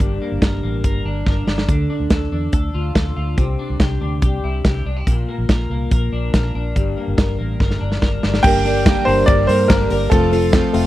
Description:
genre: jangly indie pop.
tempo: 142 BPM.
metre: 4/4.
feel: straight.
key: unclear.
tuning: A4 = 440 Hz.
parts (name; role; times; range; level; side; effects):
twelve-string electric guitar; arpeggios; 0.0-10.9 s; G2 to Bb4; -24 LUFS; left 3 dB; lush chorus, tape echo.
vintage muted fingered electric bass; bass; 0.0-10.9 s; F1 to G2; -21 LUFS; equal; none.
modern studio drum kit; drums; 0.0-10.8 s; crash cymbal, hi-hat, kick drum, ride cymbal, snare drum; -18 LUFS; equal; none.
bright upright piano; melody; 8.4-10.7 s; A4 to G5; -17 LUFS; equal; none.
picked twelve-string acoustic guitar; accompaniment; 8.4-10.9 s; G2 to Bb4; -22 LUFS; right 9 dB; none.
reed electric piano; accompaniment; 8.4-10.9 s; A3 to Bb4; -22 LUFS; left 6 dB; none.
room: little or no reverb.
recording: dry, close 1970s-style studio recording.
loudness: -15 LUFS.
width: side -15 dB against mid.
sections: 0.0-8.4 A section; 8.4-10.9 B section.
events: drum fill 1.3-1.7, 7.6-8.4.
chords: 0.0 Gm; 1.7 Dm; 3.4 Cadd9; 5.1 Bb; 6.8 Gm; 10.1 F.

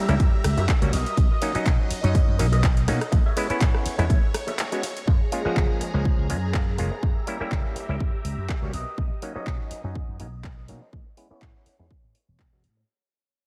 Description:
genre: filtered disco house.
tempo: 123 BPM.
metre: 4/4.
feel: swing 54% on 16ths.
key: F# major.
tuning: A4 = 440 Hz.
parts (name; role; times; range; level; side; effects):
auto-wah clav; accompaniment; 0.0-12.6 s; E#3 to F#4; -33 LUFS; equal; phaser, sidechain pumping, low-pass filter.
phased string machine; sustained chords; 0.0-12.9 s; G3 to A#5; -37 LUFS; equal; ensemble chorus, phaser, sidechain pumping, low-pass filter.
slap bass; bass; 0.1-12.8 s; E1 to B2; -28 LUFS; equal; tube saturation, sidechain pumping, low-pass filter.
punchy analog drum machine; drums; 0.1-12.7 s; handclaps, hi-hat, ride cymbal, rim click; -34 LUFS; equal; sidechain pumping on hats, sidechain pumping on cymbals.
electric guitar with an envelope filter; riff; 0.2-12.8 s; F#4 to F#5; -38 LUFS; equal; lush chorus, sidechain pumping, low-pass filter.
electronic kick drum; drums; 0.2-12.5 s; none; -25 LUFS; equal; none.
room: light reverb.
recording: none.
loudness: -24 LUFS.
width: mono.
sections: 0.0-5.1 A section; 5.1-12.9 B section.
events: drop 0.0-5.1; clean electric guitar fill 0.4-1.2; break 4.6-5.1; fade-out 5.1-12.9; filter sweep 5.1-12.9.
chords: 0.0 F#7b9; 0.9 Bmaj7; 3.1 Amaj7; 5.1 F#maj9; 7.0 F#7b9; 8.7 Bmaj7; 10.9 Amaj7.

